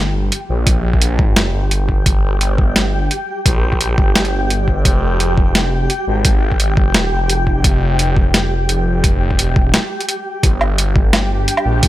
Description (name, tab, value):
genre	half-time drum and bass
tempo	172 BPM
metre	4/4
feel	swing 54% on 16ths, half-time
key	G phrygian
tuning	A4 = 439 Hz
part	phased detuned saw bass	bass	0.0-11.9 s	F1 to Bb1	-17 LUFS	equal	phaser
part	flickering grainy texture	texture	0.0-11.9 s	G4 to G5	-23 LUFS	equal	built-in reverb
part	boom bap sampler-style drum kit	drums	0.3-11.9 s	hi-hat, snare drum, woodblock	-17 LUFS	equal	overdrive
part	electronic kick drum	drums	0.7-11.9 s	none	-15 LUFS	equal	overdrive
part	bowed-like drone	sustained chords	11.0-11.9 s	G3 to G4	-29 LUFS	equal	built-in reverb, phaser, sidechain pumping
room	little or no reverb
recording	none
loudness	-13 LUFS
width	side -15 dB against mid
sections	0.0-11.9 A section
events	break 9.7-10.4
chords	0.0 Gm; 4.9 Fm; 10.4 Gm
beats	0.32 | 0.67 1.02 1.36 1.71 | 2.06 2.41 2.76 3.11 | 3.46 3.81 4.16 4.50 | 4.85 5.20 5.55 5.90 | 6.25 6.60 6.95 7.30 | 7.64 7.99 8.34 8.69 | 9.04 9.39 9.74 10.09 | 10.44 10.78 11.13 11.48 | 11.83